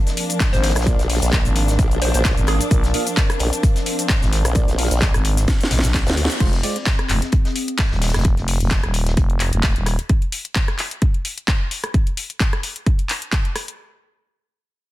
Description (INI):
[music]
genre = bass house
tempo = 130 BPM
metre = 4/4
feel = swing 54% on 16ths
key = F dorian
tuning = A4 = 441 Hz
[part]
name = dark studio string section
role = sustained chords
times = 0.0-6.4 s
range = F3 to D4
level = -29 LUFS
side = left 3 dB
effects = sidechain pumping
[part]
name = warbly tape-like pad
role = texture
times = 0.0-8.2 s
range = C4 to F5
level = -30 LUFS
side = right 1 dB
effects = chorus, built-in reverb, sidechain pumping
[part]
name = house drum kit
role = drums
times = 0.1-13.8 s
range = crash cymbal, handclaps, hi-hat, rim click, shaker, snare drum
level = -24 LUFS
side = left 1 dB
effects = none
[part]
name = modern studio drum kit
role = drums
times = 0.1-10.1 s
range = hi-hat, snare drum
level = -33 LUFS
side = left 2 dB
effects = none
[part]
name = electronic kick drum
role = drums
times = 0.4-13.4 s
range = none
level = -18 LUFS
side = equal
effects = none
[part]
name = hollow square pluck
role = melody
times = 0.5-2.8 s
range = Ab4 to C5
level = -29 LUFS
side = equal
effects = wide subtle chorus, digital delay
[part]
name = growling FM bass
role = bass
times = 0.5-10.0 s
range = Eb1 to Bb1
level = -19 LUFS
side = equal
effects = sidechain pumping
[part]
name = formant-sweep wobble bass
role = bass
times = 0.8-6.3 s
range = Bb1 to D2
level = -20 LUFS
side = equal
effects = chorus, tube saturation, sidechain pumping
[part]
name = percussive organ stab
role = stabs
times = 0.9-6.8 s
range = Ab3 to F5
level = -30 LUFS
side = right 3 dB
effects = wide subtle chorus, sidechain pumping, digital delay
[sound]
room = little or no reverb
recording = dense, heavily limited modern master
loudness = -17 LUFS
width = side -16 dB against mid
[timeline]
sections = 0.0-6.4 A section; 6.4-13.8 B section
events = drop 0.0-6.4; drum fill 5.5-6.4; band accent 6.2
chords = 0.0 Bb; 6.4 Fm